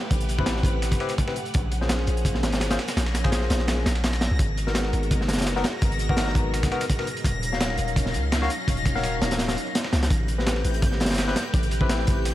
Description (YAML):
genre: drum and bass, jungle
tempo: 168 BPM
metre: 4/4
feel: swing 53% on 16ths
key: G# dorian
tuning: A4 = 440 Hz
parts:
  - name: soft string machine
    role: sustained chords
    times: 0.0-12.3 s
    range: F#3 to E#5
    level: -33 LUFS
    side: right 1 dB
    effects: ensemble chorus
  - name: backwards swelling texture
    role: texture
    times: 0.0-12.3 s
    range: F#5 to A#6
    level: -36 LUFS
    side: left 2 dB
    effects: built-in reverb
  - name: long sustained 808-style bass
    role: bass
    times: 0.1-12.3 s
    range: D#1 to C#2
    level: -26 LUFS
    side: equal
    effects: none
  - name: crunchy breakbeat drum kit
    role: drums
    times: 0.1-12.3 s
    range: hi-hat, kick drum, snare drum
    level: -25 LUFS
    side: equal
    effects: none
  - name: dusty soul sampler-style drum kit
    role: drums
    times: 0.1-12.3 s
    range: hi-hat, snare drum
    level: -36 LUFS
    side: right 1 dB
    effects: high-pass filter on hats, high-pass filter on snare, high-pass filter on room
  - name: barky tine electric piano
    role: stabs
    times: 0.4-12.3 s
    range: B3 to E#5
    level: -31 LUFS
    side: left 3 dB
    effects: analog chorus, dub echo
room: little or no reverb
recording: vinyl crackle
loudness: -21 LUFS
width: side -14 dB against mid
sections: 0.0-12.3 A section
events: none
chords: 0.0 Am9; 1.5 A#m9; 4.4 G#m9; 7.3 D#m9; 10.1 Am9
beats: | 0.11 0.47 0.82 1.18 | 1.54 1.90 2.25 2.61 | 2.97 3.33 3.68 4.04 | 4.40 4.75 5.11 5.47 | 5.83 6.18 6.54 6.90 | 7.25 7.61 7.97 8.32 | 8.68 9.04 9.40 9.75 | 10.11 10.47 10.82 11.18 | 11.54 11.90 12.25